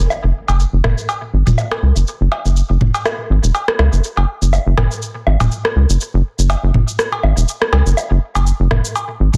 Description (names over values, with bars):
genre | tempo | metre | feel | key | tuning
minimal techno | 122 BPM | 4/4 | swing 55% on 16ths | unclear | A4 = 442 Hz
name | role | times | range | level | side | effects
rubbery square bass | bass | 0.0-9.4 s | E1 to C#2 | -16 LUFS | equal | none
shaker | drums | 0.1-9.4 s | none | -30 LUFS | equal | low-pass filter on perc, low-pass filter on hats, low-pass filter on snare, low-pass filter on room
booming analog drum machine | percussion | 0.1-9.4 s | cowbell, rim click, toms, woodblock | -21 LUFS | equal | soft clipping on snare, tape echo
room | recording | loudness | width
little or no reverb | dense, heavily limited modern master | -16 LUFS | mono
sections
0.0-9.4 A section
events
none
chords
none